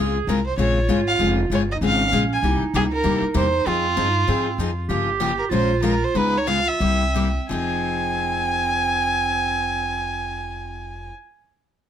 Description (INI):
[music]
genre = acoustic string swing (jazz manouche)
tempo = 166-195 BPM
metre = 4/4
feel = swing 58% on 8ths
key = F minor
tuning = A4 = 440 Hz
[part]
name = breathy clarinet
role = second line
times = 0.0-11.1 s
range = C4 to Ab4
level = -27 LUFS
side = right 6 dB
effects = none
[part]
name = picked steel-string acoustic guitar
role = accompaniment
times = 0.0-11.1 s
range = C3 to Bb4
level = -25 LUFS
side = left 6 dB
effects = none
[part]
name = upright bass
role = bass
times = 0.0-11.1 s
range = F1 to Ab2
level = -26 LUFS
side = equal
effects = none
[part]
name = dark violin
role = melody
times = 0.3-11.1 s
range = F4 to Ab5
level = -22 LUFS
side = right 2 dB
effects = none
[sound]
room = light reverb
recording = close, detailed microphones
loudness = -19 LUFS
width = side -9 dB against mid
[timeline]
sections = 0.0-4.9 A section; 4.9-7.5 B section; 7.5-10.4 C section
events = slowing down 4.9-7.5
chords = 0.0 Dbmaj7; 2.4 C7#9; 3.7 Fm9; 4.9 Gm7b5; 5.5 Bbm7; 6.1 Db9; 6.8 C7; 7.5 Fm7